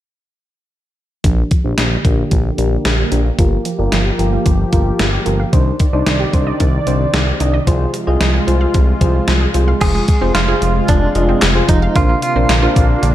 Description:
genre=synth-pop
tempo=112 BPM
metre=4/4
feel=straight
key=Bb mixolydian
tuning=A4 = 438 Hz
part: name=soft electric-piano-like synth keys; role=accompaniment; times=1.2-13.0 s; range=D4 to Eb5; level=-22 LUFS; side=left 2 dB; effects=chorus, low-pass filter
part: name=warm analog pad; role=sustained chords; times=1.9-13.1 s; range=C3 to D5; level=-22 LUFS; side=equal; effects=chorus, low-pass filter
part: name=analog pluck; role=arpeggios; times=1.2-13.1 s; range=D3 to F5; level=-24 LUFS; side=right 4 dB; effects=chorus, low-pass filter, digital delay
part: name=smooth synth bass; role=bass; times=1.2-13.1 s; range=F1 to C2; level=-16 LUFS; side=equal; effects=none
part: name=gated 80s digital drum machine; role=drums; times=1.2-13.1 s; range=crash cymbal, handclaps, hi-hat, kick drum, snare drum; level=-16 LUFS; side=equal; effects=gated reverb, gated reverb snare
part: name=direct-recorded clean electric guitar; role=melody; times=9.8-13.1 s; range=D4 to Ab4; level=-19 LUFS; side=right 2 dB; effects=tremolo, digital delay
room=light reverb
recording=none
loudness=-12 LUFS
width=side -13 dB against mid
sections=1.2-9.8 A section; 9.8-13.1 B section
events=filter sweep 1.2-9.8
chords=1.2 Bb6; 3.4 Gm7; 5.5 Cmadd9; 7.7 Fm/C; 9.8 Fm; 12.0 Bbadd9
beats=| 1.24 1.78 2.31 2.85 | 3.39 3.92 4.46 4.99 | 5.53 6.06 6.60 7.14 | 7.67 8.21 8.74 9.28 | 9.81 10.35 10.89 11.42 | 11.96 12.49 13.03

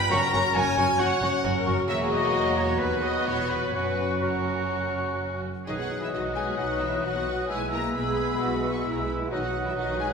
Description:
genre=quick classical-period movement for symphony orchestra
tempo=123-136 BPM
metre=4/4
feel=rubato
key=B major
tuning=A4 = 440 Hz
part: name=warm studio violin section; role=melody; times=0.0-10.1 s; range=A#4 to C#6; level=-35 LUFS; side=left 4 dB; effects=none
part: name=warm studio viola section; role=accompaniment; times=0.0-10.1 s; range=D#3 to C#5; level=-35 LUFS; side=left 1 dB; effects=none
part: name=clear trumpet section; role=stabs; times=0.0-5.4 s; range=A#4 to B5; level=-28 LUFS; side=equal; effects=none
part: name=clear clarinet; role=second line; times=0.1-10.1 s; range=F#4 to B4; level=-37 LUFS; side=left 3 dB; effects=none
part: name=mellow hollow silver concert flute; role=second line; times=0.1-10.1 s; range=C#6 to F#6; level=-34 LUFS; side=left 3 dB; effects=none
part: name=rich studio violin section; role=second line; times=0.1-10.1 s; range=A#3 to B4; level=-35 LUFS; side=left 2 dB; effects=none
part: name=warm oboe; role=second line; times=0.1-10.1 s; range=D#5 to C#6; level=-34 LUFS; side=right 2 dB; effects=none
part: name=mellow bassoon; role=accompaniment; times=0.1-10.1 s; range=F#3 to G#3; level=-33 LUFS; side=equal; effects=none
part: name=mellow French horn section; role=sustained chords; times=0.1-10.1 s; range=D#3 to C#4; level=-33 LUFS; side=left 2 dB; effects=none
part: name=rich studio double bass section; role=bass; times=0.1-10.1 s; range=E1 to D#2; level=-34 LUFS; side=right 3 dB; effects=none
part: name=warm studio cello section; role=bass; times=0.1-10.1 s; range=D#2 to G#4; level=-33 LUFS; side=right 2 dB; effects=none
room=wet scoring stage reverb, RT60 1.6 s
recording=recorded in a church or concert hall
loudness=-24 LUFS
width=side -5 dB against mid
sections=0.0-5.7 A section; 5.7-10.1 B section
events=none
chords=0.1 F#; 1.9 F#7/E; 2.8 B/D#; 3.7 F#; 5.7 B; 7.5 E/B; 9.3 B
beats=| 0.11 0.55 0.99 1.44 | 1.89 2.34 2.79 3.26 | 3.74 4.22 4.71 5.19 | 5.67 6.13 6.59 7.04 | 7.50 7.96 8.41 8.86 | 9.32 9.77

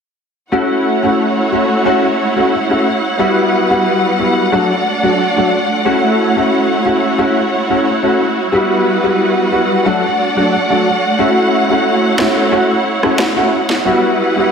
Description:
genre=dancehall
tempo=90 BPM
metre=4/4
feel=straight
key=unclear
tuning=A4 = 436 Hz
part: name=warm concert grand piano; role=accompaniment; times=0.5-14.5 s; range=F#3 to F#4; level=-14 LUFS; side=left 1 dB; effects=ensemble chorus
part: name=dark studio string section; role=sustained chords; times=0.5-14.5 s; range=G3 to F#5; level=-15 LUFS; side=right 1 dB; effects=none
part: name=electronic snare drum and rim click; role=drums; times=12.2-13.8 s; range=none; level=-18 LUFS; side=equal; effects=overdrive
room=wet lush hall reverb, RT60 2.3 s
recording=dreamy mix soaked in reverb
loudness=-11 LUFS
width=side -6 dB against mid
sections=0.5-14.5 A section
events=none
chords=0.5 F#m7; 3.2 Emadd9; 4.5 D; 5.9 F#m7; 8.5 Emadd9; 9.9 D; 11.2 F#m7; 13.9 Emadd9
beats=| 0.52 1.19 1.85 2.52 | 3.19 3.85 4.52 5.19 | 5.86 6.52 7.19 7.86 | 8.52 9.19 9.86 10.52 | 11.19 11.86 12.52 13.19 | 13.86

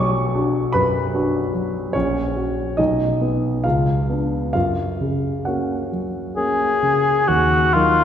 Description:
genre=classical, romantic duo for cor anglais and grand piano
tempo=64-76 BPM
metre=3/4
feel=rubato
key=F# major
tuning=A4 = 440 Hz
part: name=warm concert grand piano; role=accompaniment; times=0.0-8.0 s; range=A#1 to D6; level=-19 LUFS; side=equal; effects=none
part: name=mellow cor anglais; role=melody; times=6.4-8.0 s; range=F4 to G#4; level=-15 LUFS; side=left 2 dB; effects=none
room=wet concert hall reverb, RT60 2.1 s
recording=heard from further back in the room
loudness=-18 LUFS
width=side -9 dB against mid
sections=0.0-7.3 A section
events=none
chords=0.0 Bm; 1.9 F#/A#; 2.8 B; 3.6 C#7b9; 4.5 F#; 7.3 Ebm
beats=0.34 1.14 | 1.94 2.78 3.64 | 4.55 5.46 6.36 | 7.27

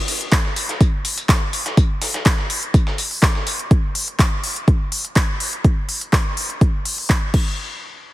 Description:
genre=house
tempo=124 BPM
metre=4/4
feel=straight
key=none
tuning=none
part: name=deep house drum kit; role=drums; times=0.1-7.4 s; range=crash cymbal, handclaps, hi-hat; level=-22 LUFS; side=left 1 dB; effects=none
part: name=dusty soul sampler-style drum kit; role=drums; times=0.1-3.6 s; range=hi-hat, snare drum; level=-28 LUFS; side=left 1 dB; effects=overdrive, sidechain pumping on hats, high-pass filter on hats, high-pass filter on snare, high-pass filter on room
part: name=electronic kick drum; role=drums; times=0.3-7.4 s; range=none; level=-16 LUFS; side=equal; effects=none
room=light reverb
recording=heavily compressed radio sound, multiband compression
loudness=-16 LUFS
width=side -16 dB against mid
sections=0.0-7.6 A section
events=none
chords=none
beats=0.32 0.81 1.29 | 1.77 2.26 2.74 3.23 | 3.71 4.19 4.68 5.16 | 5.64 6.13 6.61 7.10

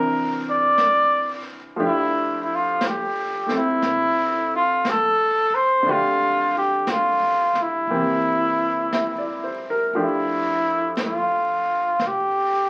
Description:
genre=jazz ballad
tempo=59 BPM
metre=4/4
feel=swing 66% on 8ths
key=F major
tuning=A4 = 441 Hz
part: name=trumpet with bucket mute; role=melody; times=0.0-12.7 s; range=E4 to D5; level=-22 LUFS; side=equal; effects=none
part: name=clear baby grand piano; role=accompaniment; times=0.0-12.7 s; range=D3 to E5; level=-29 LUFS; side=equal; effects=none
part: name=upright bass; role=bass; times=0.0-12.7 s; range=C2 to F2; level=-48 LUFS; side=equal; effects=none
part: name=jazz brush drum kit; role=drums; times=0.8-12.7 s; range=brushed snare drum, hi-hat, snare drum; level=-35 LUFS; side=equal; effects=none
room=wet club reverb, RT60 0.6 s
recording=very old 78 rpm record, vinyl crackle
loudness=-21 LUFS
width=mono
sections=0.0-10.0 A section; 10.0-12.7 A section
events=none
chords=0.0 C9; 1.8 Fmaj13; 7.9 C7; 10.0 Fmaj13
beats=0.75 | 1.77 2.79 3.81 4.83 | 5.85 6.88 7.90 8.93 | 9.95 10.97 11.99

